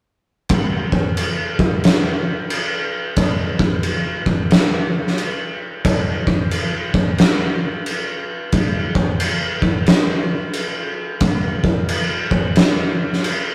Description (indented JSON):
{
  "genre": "metal",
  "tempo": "89 BPM",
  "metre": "4/4",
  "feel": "swing 63% on 8ths",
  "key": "none",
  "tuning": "none",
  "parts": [
    { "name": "oversized low-tuned drum kit", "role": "drums", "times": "0.5-13.4 s", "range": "crash cymbal, kick drum, snare drum", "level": "-19 LUFS", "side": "equal", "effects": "none" }
  ],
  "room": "little or no reverb",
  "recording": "rough rehearsal-room recording, warm saturation",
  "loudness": "-19 LUFS",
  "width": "mono",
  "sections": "0.5-13.5 A section",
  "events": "none",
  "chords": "none",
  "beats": "| 0.49 1.16 1.83 2.50 | 3.17 3.84 4.50 5.17 | 5.84 6.51 7.19 7.86 | 8.53 9.20 9.87 10.54 | 11.21 11.89 12.56 13.23"
}